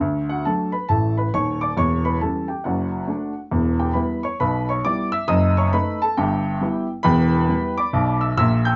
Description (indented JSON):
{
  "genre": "jazz, stride piano",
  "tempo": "136 BPM",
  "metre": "4/4",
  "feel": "swing 64% on 8ths",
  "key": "D major",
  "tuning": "A4 = 440 Hz",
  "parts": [
    { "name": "warm baby grand piano", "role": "solo", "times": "0.0-8.8 s", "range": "Eb1 to G6", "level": "-21 LUFS", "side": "equal", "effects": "none" }
  ],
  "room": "wet booth ambience, RT60 0.2 s",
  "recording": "heard from further back in the room, nothing above 7.5 kHz",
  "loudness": "-21 LUFS",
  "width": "mono",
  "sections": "0.0-8.8 A section",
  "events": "none",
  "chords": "0.0 D; 1.8 C#dim/E; 2.6 D/F#; 3.5 Em; 5.3 D#dim/F#; 6.2 Em/G; 7.0 Em"
}